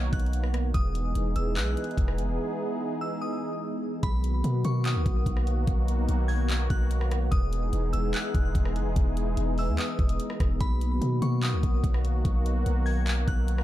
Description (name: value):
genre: hip hop, atmospheric cloud-rap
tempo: 146 BPM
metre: 4/4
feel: half-time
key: B major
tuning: A4 = 440 Hz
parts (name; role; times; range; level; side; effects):
- glassy synth bell; melody; 0.0-13.5 s; B5 to G#6; -38 LUFS; left 1 dB; chorus, digital delay
- sweeping resonant pad; sustained chords; 0.0-13.6 s; D#3 to G#4; -31 LUFS; equal; lush chorus, sidechain pumping
- long sustained 808-style bass; bass; 0.0-13.6 s; E1 to B2; -26 LUFS; equal; none
- smooth R&B drum kit; drums; 0.1-13.6 s; handclaps, hi-hat, kick drum, rim click; -28 LUFS; equal; none
room: little or no reverb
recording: dark, warm production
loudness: -24 LUFS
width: side -14 dB against mid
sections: 0.0-4.0 A section; 4.0-13.6 B section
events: break 2.4-4.0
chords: 0.0 Bmaj7; 0.7 Emaj7; 4.0 Bmaj7; 7.3 Emaj7; 10.6 Bmaj7